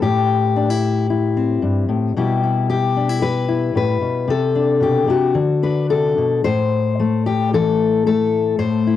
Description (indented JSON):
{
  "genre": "folk, solo fingerstyle acoustic guitar",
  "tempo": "112 BPM",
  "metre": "4/4",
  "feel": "rubato",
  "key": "unclear",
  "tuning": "A4 = 440 Hz",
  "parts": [
    { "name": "fingerpicked steel-string acoustic guitar", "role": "solo", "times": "0.0-9.0 s", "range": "G2 to C5", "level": "-16 LUFS", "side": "left 4 dB", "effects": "cassette tape" }
  ],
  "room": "moderate small room reverb, RT60 0.6 s",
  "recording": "home recording on cassette",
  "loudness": "-16 LUFS",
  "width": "side -11 dB against mid",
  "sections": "0.0-6.5 A section; 6.5-9.0 B section",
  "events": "none",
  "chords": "0.0 Am7; 2.2 Em/B; 4.3 Csus2; 6.5 Am",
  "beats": "| 0.03 0.56 1.10 1.63 | 2.16 2.69 3.21 3.75 | 4.28 4.82 5.36 5.91 | 6.46 7.00 7.54 8.07 | 8.60"
}